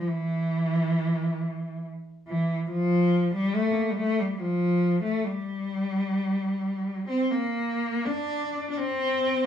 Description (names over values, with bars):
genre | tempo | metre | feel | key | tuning
celtic folk | 61-71 BPM | 3/4 | rubato | G dorian | A4 = 440 Hz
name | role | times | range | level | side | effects
rich cello | solo | 0.0-9.5 s | E3 to D4 | -24 LUFS | equal | none
room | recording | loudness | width
moderate studio reverb, RT60 0.7 s | band playing live in one room, studio ambience | -24 LUFS | side -9 dB against mid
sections
0.0-8.0 A section; 8.0-9.5 B section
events
none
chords
none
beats
| 0.07 0.97 1.84 | 2.69 3.54 4.38 | 5.24 6.13 7.06 | 8.03 8.97